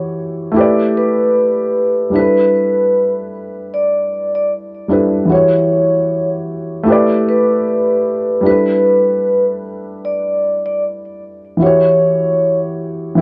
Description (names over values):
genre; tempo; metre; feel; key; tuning
hip hop; 76 BPM; 4/4; swing 55% on 16ths; unclear; A4 = 440 Hz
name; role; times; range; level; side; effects
dark upright piano; accompaniment; 0.0-13.2 s; E3 to D5; -18 LUFS; equal; low-pass filter
vibraphone with soft mallets; melody; 1.0-12.6 s; B4 to D5; -17 LUFS; equal; low-pass filter, tape echo
room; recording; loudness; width
moderate studio reverb, RT60 0.6 s; cassette tape; -15 LUFS; mono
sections
0.0-13.2 A section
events
none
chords
0.0 Em69; 0.6 A9sus4; 2.1 G6; 5.3 Em69; 6.9 A9sus4; 8.5 G6; 11.6 Em69